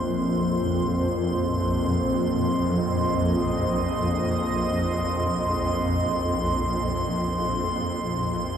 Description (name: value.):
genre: dark ambient drone.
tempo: free time.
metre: none.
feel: none.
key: unclear.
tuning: A4 = 440 Hz.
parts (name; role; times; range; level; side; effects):
sweeping resonant pad; sustained chords; 0.0-8.6 s; Bb3 to Eb5; -29 LUFS; right 1 dB; chorus.
swarming drone; drone; 0.0-8.6 s; Bb1 to F2; -24 LUFS; equal; built-in reverb.
icy glass pad; texture; 0.0-8.6 s; C6; -30 LUFS; right 1 dB; chorus, built-in reverb.
room: wet huge ambient reverb, RT60 8.2 s.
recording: none.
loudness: -22 LUFS.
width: side -8 dB against mid.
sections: 0.0-8.6 A section.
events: none.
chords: 0.0 Bbmadd9.